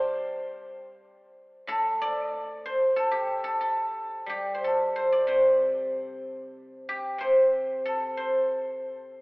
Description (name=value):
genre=chinese traditional, Chinese solo plucked strings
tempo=93 BPM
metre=2/4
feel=rubato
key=C zhi mode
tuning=A4 = 443 Hz
part: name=guzheng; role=solo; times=0.0-9.2 s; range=A2 to C6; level=-25 LUFS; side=equal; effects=none
room=wet church reverb, RT60 3.2 s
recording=recorded in a church or concert hall, telephone sound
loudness=-24 LUFS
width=side -28 dB against mid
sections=0.0-9.2 A section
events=none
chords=none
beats=| 0.42 1.06 | 1.69 2.32 | 2.95 3.60 | 4.28 4.94 | 5.59 6.24 | 6.88 7.52 | 8.16 8.82